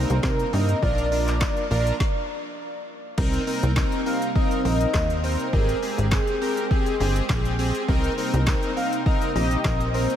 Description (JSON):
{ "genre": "dance-pop", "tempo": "102 BPM", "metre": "4/4", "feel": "straight", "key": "C minor", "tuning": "A4 = 442 Hz", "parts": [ { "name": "warm velvety synth lead", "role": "melody", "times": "0.0-10.2 s", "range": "Ab4 to F5", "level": "-29 LUFS", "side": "equal", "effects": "chorus, tape echo" }, { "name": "big bright polysynth", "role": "accompaniment", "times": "0.0-10.2 s", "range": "C4 to Bb4", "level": "-28 LUFS", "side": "equal", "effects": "chorus, sidechain pumping" }, { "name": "sweeping resonant pad", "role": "sustained chords", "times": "0.0-10.2 s", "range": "C3 to G5", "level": "-31 LUFS", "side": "right 1 dB", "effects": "lush chorus, sidechain pumping" }, { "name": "plucky analog bass", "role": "bass", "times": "0.0-10.1 s", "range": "G1 to C3", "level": "-24 LUFS", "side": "equal", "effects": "sidechain pumping" }, { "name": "deep house drum kit", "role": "drums", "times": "0.1-10.2 s", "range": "crash cymbal, handclaps, hi-hat, kick drum, snare drum", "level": "-26 LUFS", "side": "equal", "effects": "none" } ], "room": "moderate huge ambient reverb, RT60 5.0 s", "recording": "dreamy mix soaked in reverb", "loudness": "-20 LUFS", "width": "side -10 dB against mid", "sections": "0.0-3.2 A section; 3.2-10.2 B section", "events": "stop 2.0-3.2", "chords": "0.0 Cm7; 0.8 Bb; 3.2 Cm7; 5.5 Abmaj7; 7.9 Cm7", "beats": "0.24 | 0.82 1.41 2.00 2.59 | 3.18 3.77 4.36 4.94 | 5.53 6.12 6.71 7.30 | 7.88 8.47 9.06 9.65" }